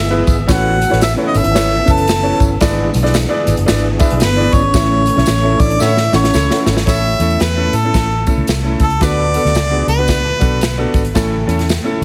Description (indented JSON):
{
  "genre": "uptempo 1960s-style soul",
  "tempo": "112 BPM",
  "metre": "4/4",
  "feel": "swing 61% on 8ths",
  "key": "unclear",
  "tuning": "A4 = 444 Hz",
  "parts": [
    { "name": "warm harmonica", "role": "melody", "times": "0.0-10.9 s", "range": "A4 to A5", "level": "-20 LUFS", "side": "equal", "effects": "tape echo" },
    { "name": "vibraphone with soft mallets", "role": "second line", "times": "0.0-6.6 s", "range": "B3 to A4", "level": "-25 LUFS", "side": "equal", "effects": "none" },
    { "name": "tonewheel organ", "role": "sustained chords", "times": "0.0-6.9 s", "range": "E3 to A4", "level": "-26 LUFS", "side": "equal", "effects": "none" },
    { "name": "vintage muted fingered electric bass", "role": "bass", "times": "0.0-12.0 s", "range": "F#1 to A2", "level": "-19 LUFS", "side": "equal", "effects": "none" },
    { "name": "clear concert grand piano", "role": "accompaniment", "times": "0.1-12.0 s", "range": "G#2 to F#5", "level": "-22 LUFS", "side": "equal", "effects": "none" },
    { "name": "swinging big-band drum kit", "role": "drums", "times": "0.3-12.0 s", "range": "hi-hat, kick drum, snare drum", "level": "-20 LUFS", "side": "equal", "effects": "none" },
    { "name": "tambourine", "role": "percussion", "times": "0.3-11.8 s", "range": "none", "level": "-33 LUFS", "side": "equal", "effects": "none" },
    { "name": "warm horn section", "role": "second line", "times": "5.8-11.6 s", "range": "C#4 to C#5", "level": "-26 LUFS", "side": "equal", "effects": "none" }
  ],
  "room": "small room ambience",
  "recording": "heavily compressed radio sound, multiband compression",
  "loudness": "-14 LUFS",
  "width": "mono",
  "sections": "0.0-6.9 A section; 6.9-12.0 B section",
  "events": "band accent 4.7-6.9; drum fill 5.8-6.9",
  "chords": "0.5 Aadd9; 2.6 E7; 4.7 A; 9.0 D6; 11.2 A"
}